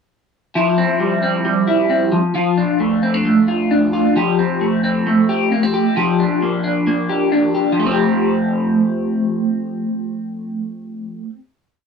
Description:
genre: indie pop.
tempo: 133 BPM.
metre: 4/4.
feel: straight.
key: F major.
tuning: A4 = 441 Hz.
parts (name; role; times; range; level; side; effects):
electric guitar through a small old amp; solo; 0.6-11.4 s; F3 to G4; -15 LUFS; equal; phaser, slapback echo.
room: light reverb.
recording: dry, close 1970s-style studio recording.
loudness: -15 LUFS.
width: side -6 dB against mid.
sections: 0.6-7.8 verse; 7.8-11.4 final chord.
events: none.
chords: 0.6 C/F; 2.1 Dm/F; 4.2 Fadd9; 6.0 Gm7/F; 7.8 Fadd9.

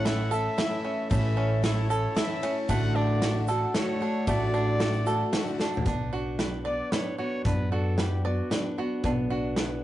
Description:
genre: indie folk with a building arrangement.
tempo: 114 BPM.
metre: 3/4.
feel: straight.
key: B minor.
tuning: A4 = 440 Hz.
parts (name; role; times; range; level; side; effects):
warm trumpet; melody; 0.0-8.7 s; F#4 to F#5; -34 LUFS; left 1 dB; none.
picked plugged-in twelve-string acoustic guitar; accompaniment; 0.0-5.9 s; A2 to F#4; -31 LUFS; left 3 dB; none.
mellow brass ensemble; sustained chords; 0.0-5.8 s; D4 to A5; -39 LUFS; equal; none.
bluegrass banjo; arpeggios; 0.0-9.8 s; A3 to D5; -32 LUFS; right 3 dB; none.
upright bass; bass; 0.0-9.8 s; A1 to F#2; -28 LUFS; right 1 dB; none.
natural country drum kit; drums; 0.1-9.7 s; hi-hat, kick drum, ride cymbal, snare drum, toms; -31 LUFS; equal; none.
egg shaker; percussion; 0.1-5.8 s; none; -51 LUFS; right 4 dB; none.
fingerpicked plugged-in steel-string acoustic guitar; accompaniment; 5.9-9.8 s; B2 to D4; -32 LUFS; left 1 dB; none.
room: moderate studio ambience, RT60 0.5 s.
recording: rough rehearsal-room recording, warm saturation, nothing above 10.8 kHz.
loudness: -24 LUFS.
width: side -14 dB against mid.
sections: 0.0-5.9 A section; 5.9-9.8 B section.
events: drum fill 5.6.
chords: 0.0 A; 2.7 D/A; 5.9 Bm.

